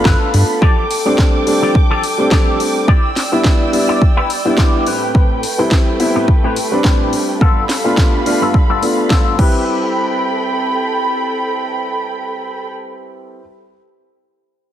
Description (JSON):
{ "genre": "nu-disco, nu disco", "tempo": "106 BPM", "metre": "4/4", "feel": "swing 55% on 16ths", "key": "A minor", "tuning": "A4 = 440 Hz", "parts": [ { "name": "warm concert grand piano", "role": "accompaniment", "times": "0.0-13.4 s", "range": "G3 to B4", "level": "-18 LUFS", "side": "equal", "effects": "tape echo" }, { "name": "muted symphonic violin section", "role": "sustained chords", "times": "0.0-12.7 s", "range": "G3 to E6", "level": "-21 LUFS", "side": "right 2 dB", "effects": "sidechain pumping" }, { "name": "electric guitar with an envelope filter", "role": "riff", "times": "0.0-13.4 s", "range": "G2 to D5", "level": "-21 LUFS", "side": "left 2 dB", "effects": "analog chorus, low-pass filter, tape echo" }, { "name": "electronic kick drum", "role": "drums", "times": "0.1-9.5 s", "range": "none", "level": "-12 LUFS", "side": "equal", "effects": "overdrive" }, { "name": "house drum kit", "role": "drums", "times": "0.1-9.5 s", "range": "crash cymbal, hi-hat, snare drum", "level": "-22 LUFS", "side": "equal", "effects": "overdrive" } ], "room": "light reverb, digital ambience", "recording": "heavily compressed radio sound", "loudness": "-12 LUFS", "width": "side -11 dB against mid", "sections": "0.0-9.7 A section; 9.7-11.9 B section", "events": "filter sweep on clean electric guitar 0.0-9.7", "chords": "0.0 G9; 0.6 F69; 2.9 Em7; 4.9 Am9; 7.4 G9; 9.4 Am9", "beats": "0.05 | 0.62 1.18 1.75 2.31 | 2.88 3.45 4.01 4.58 | 5.15 5.71 6.28 6.84 | 7.41 7.98 8.54 9.11 | 9.67 10.24 10.81 11.37" }